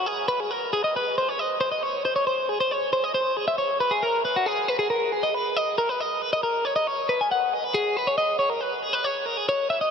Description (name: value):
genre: rock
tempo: 137 BPM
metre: 5/4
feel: straight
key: unclear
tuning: A4 = 440 Hz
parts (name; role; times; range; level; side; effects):
- twelve-string electric guitar; solo; 0.0-9.9 s; F#4 to G#5; -22 LUFS; left 1 dB; none
room: wet huge ambient reverb, RT60 6.4 s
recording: dreamy mix soaked in reverb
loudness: -22 LUFS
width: side -6 dB against mid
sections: 0.0-5.6 A section; 5.6-9.9 B section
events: none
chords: none